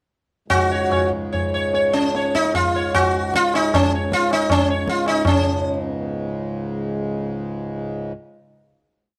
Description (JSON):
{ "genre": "indian classical, Hindustani", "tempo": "144-181 BPM", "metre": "3/4", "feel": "straight", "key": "C# major", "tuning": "A4 = 440 Hz", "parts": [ { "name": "sitar", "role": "melody", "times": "0.5-6.3 s", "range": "C#4 to C#5", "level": "-21 LUFS", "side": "equal", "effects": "none" }, { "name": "pedal harmonium", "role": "drone", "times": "0.5-8.1 s", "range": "C#2 to G#2", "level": "-29 LUFS", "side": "equal", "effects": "none" }, { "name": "tabla", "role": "percussion", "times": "0.5-5.4 s", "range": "none", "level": "-25 LUFS", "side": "equal", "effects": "none" } ], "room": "light reverb, small room ambience", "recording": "none", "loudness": "-21 LUFS", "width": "mono", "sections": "0.5-5.2 climax; 5.2-7.3 final chord", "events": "speeding up 0.5-7.3", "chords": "none" }